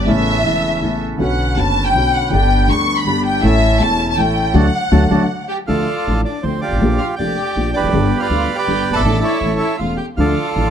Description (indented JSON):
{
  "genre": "tango",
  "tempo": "160 BPM",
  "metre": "3/4",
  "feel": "rubato",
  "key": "D major, D minor from 5.7 s",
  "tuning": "A4 = 440 Hz",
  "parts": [
    { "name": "warm studio violin section", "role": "second line", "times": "0.0-10.7 s", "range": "C4 to C#6", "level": "-20 LUFS", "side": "left 1 dB", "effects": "none" },
    { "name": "dark upright piano", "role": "accompaniment", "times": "0.0-10.7 s", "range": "E1 to A4", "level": "-18 LUFS", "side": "left 1 dB", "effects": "none" },
    { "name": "bandoneon", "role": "stabs", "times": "0.0-5.2 s", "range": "B3 to B4", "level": "-27 LUFS", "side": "right 4 dB", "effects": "tape echo" },
    { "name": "upright bass", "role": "bass", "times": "0.0-10.7 s", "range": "E1 to D2", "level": "-20 LUFS", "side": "equal", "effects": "none" },
    { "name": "bandoneon", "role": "melody", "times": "5.5-10.7 s", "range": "F4 to A5", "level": "-20 LUFS", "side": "right 4 dB", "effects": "none" }
  ],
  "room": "light reverb",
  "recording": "close, detailed microphones",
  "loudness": "-14 LUFS",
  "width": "side -8 dB against mid",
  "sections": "0.0-5.7 A section; 5.7-10.7 B section",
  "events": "violin section solo 0.0-5.7; band accent 4.5-5.7",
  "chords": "0.1 Aadd9; 1.2 Bmadd9; 2.3 G; 3.4 A; 4.5 D; 5.7 Dm; 6.8 Bb6; 7.9 G; 9.0 Asus4; 9.4 A; 10.2 Dm"
}